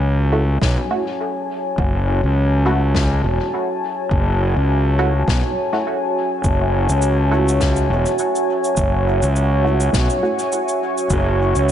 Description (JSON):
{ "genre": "ambient dub", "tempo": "103 BPM", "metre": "4/4", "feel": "swing 56% on 16ths", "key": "F# minor", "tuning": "A4 = 439 Hz", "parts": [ { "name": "deep dark ambient pad", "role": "sustained chords", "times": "0.0-11.7 s", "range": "F#4 to C#6", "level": "-20 LUFS", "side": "equal", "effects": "chorus, built-in reverb" }, { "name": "fuzz fingered electric bass", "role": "bass", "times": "0.0-11.7 s", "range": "E1 to C#2", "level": "-17 LUFS", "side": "equal", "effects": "overdrive, tube saturation" }, { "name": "filtered dub chord stab", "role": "stabs", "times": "0.3-10.4 s", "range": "A3 to F#4", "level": "-26 LUFS", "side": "right 2 dB", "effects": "chorus, dub echo" }, { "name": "electronic kick drum", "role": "drums", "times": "0.6-11.2 s", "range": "none", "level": "-21 LUFS", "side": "equal", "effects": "none" }, { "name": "snare drum and cabasa", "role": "drums", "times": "0.6-11.7 s", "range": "none", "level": "-27 LUFS", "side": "left 3 dB", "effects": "dub echo" } ], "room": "moderate spring reverb, RT60 2.2 s", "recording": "nothing above 11.0 kHz", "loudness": "-16 LUFS", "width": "side -10 dB against mid", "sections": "0.0-11.7 A section", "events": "none", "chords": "0.0 F#m7" }